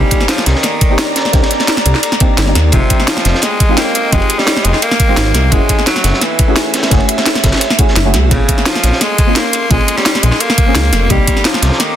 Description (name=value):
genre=liquid drum and bass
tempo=172 BPM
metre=4/4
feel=straight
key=unclear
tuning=A4 = 440 Hz
part: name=raspy tenor saxophone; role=melody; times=0.0-12.0 s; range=C3 to Bb3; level=-18 LUFS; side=equal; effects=digital delay
part: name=deep mellow chord stab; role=accompaniment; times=0.0-12.0 s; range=Ab3 to Ab4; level=-20 LUFS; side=left 1 dB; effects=chorus, digital delay
part: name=airy breathy pad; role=sustained chords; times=0.0-12.0 s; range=D5 to D6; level=-22 LUFS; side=right 1 dB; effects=chorus, sidechain pumping
part: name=dark detuned saw bass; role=bass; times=0.0-11.7 s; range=F1 to Eb2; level=-13 LUFS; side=equal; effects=none
part: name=crunchy breakbeat drum kit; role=drums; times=0.1-11.9 s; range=ride cymbal, snare drum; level=-20 LUFS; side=equal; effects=high-pass filter on cymbals, high-pass filter on snare, high-pass filter on room
part: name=drum and bass drum kit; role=drums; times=0.1-11.9 s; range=hi-hat, snare drum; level=-16 LUFS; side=equal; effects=overdrive
part: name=electronic kick drum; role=drums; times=0.1-11.3 s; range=none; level=-13 LUFS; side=equal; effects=overdrive
room=small room ambience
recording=dense, heavily limited modern master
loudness=-10 LUFS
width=side -11 dB against mid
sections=0.0-12.0 A section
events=none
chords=0.0 Cm9; 2.7 Fm9; 5.5 Gbm9; 8.3 Bbm9; 11.1 Cm9